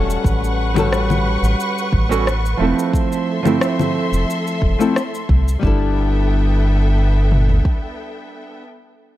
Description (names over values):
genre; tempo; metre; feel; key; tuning
sunset chillout; 89 BPM; 4/4; straight; unclear; A4 = 440 Hz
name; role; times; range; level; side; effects
nylon-string guitar; accompaniment; 0.0-8.7 s; F3 to A4; -21 LUFS; moving between left 5 dB and right 6 dB; auto-pan, low-pass filter, digital delay
rich studio string section; sustained chords; 0.0-8.6 s; B3 to C#6; -25 LUFS; left 1 dB; none
round analog bass; bass; 0.0-7.6 s; E1 to C2; -17 LUFS; equal; none
electronic shaker, congas and rim click; drums; 0.1-5.6 s; none; -23 LUFS; left 3 dB; none
deep house drum kit; drums; 0.2-7.8 s; kick drum, toms; -19 LUFS; equal; none
room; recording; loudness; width
studio reverb; none; -15 LUFS; side -14 dB against mid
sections
0.0-5.6 A section; 5.6-8.3 B section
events
filter sweep on analog synth bass 0.0-5.6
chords
0.2 A13; 2.9 Fmaj7; 5.6 G69